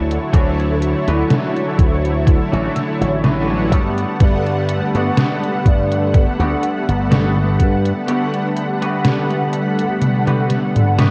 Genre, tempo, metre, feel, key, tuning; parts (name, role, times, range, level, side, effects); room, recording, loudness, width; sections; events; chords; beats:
vaporwave; 62 BPM; 4/4; swing 53% on 16ths; A4 = 440 Hz
mellow synth brass; accompaniment; 0.0-11.1 s; D3 to F#5; -21 LUFS; equal; ensemble chorus, cassette tape, tape echo
soft string machine; sustained chords; 0.0-11.1 s; G3 to C#6; -31 LUFS; equal; ensemble chorus
slap bass with an envelope filter; bass; 0.0-7.9 s; G1 to G2; -21 LUFS; equal
detuned 8-bit digital drum machine; drums; 0.1-11.1 s; hi-hat, snare drum, toms; -21 LUFS; equal; gated reverb
twangy electric guitar; riff; 0.3-11.1 s; B3 to B4; -30 LUFS; equal; lush chorus, tape echo
electronic kick drum; drums; 0.3-7.8 s; -16 LUFS; equal; overdrive
moderate concert hall reverb, RT60 2.2 s; cassette tape; -17 LUFS; mono
0.0-11.1 A section
drum fill 10.0-11.1
0.0 Dmaj7; 3.7 Gmaj9
| 0.34 1.30 2.27 3.24 | 4.21 5.17 6.14 7.11 | 8.08 9.04 10.01 10.98